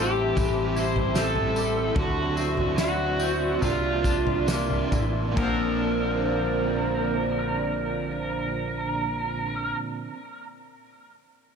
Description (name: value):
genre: dream pop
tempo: 66-77 BPM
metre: 4/4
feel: straight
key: Bb lydian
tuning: A4 = 439 Hz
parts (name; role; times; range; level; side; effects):
- overdriven slide guitar; melody; 0.0-9.8 s; F4 to C5; -28 LUFS; equal; digital delay
- overdriven electric guitar; accompaniment; 0.0-10.2 s; Bb2 to E4; -31 LUFS; right 5 dB; tremolo, ensemble chorus
- warbly tape-like pad; sustained chords; 0.0-9.8 s; Bb3 to C6; -31 LUFS; right 1 dB; chorus, built-in reverb
- semi-hollow electric guitar; arpeggios; 0.0-10.2 s; A2 to E4; -32 LUFS; left 5 dB; lush chorus, digital delay
- plucky analog bass; bass; 0.0-9.8 s; A1 to D2; -32 LUFS; equal; none
- worn celesta; texture; 0.0-10.1 s; none; barely audible; none; none
- loose indie drum kit; drums; 0.4-5.6 s; crash cymbal, kick drum, snare drum, tambourine, toms; -30 LUFS; equal; none
room: light reverb, studio reverb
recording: none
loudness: -23 LUFS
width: side -6 dB against mid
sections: 0.0-5.4 A section; 5.4-9.0 B section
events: slowing down 0.0-5.4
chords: 0.0 Am7; 2.0 D9; 3.6 C9; 5.4 Bbadd9